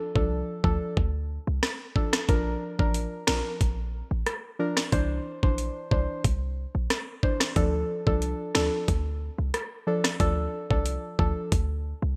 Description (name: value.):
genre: dancehall.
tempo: 91 BPM.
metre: 4/4.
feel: straight.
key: D minor.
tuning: A4 = 440 Hz.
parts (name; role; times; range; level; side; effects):
deep mellow chord stab; accompaniment; 0.0-11.5 s; E3 to C5; -32 LUFS; equal; chorus, sidechain pumping.
short 808-style bass; bass; 0.2-12.2 s; A1 to D2; -31 LUFS; equal; none.
island pop drum kit; drums; 0.2-11.7 s; hi-hat, kick drum, rim click, snare drum; -28 LUFS; equal; overdrive, vintage 12-bit sampler grit.
room: light reverb.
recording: bright 1980s-style digital production.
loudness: -27 LUFS.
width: mono.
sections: 0.0-12.2 A section.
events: break 0.0-2.3.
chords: 0.0 Dm; 2.3 Bb; 4.9 Cadd9; 7.6 Dm.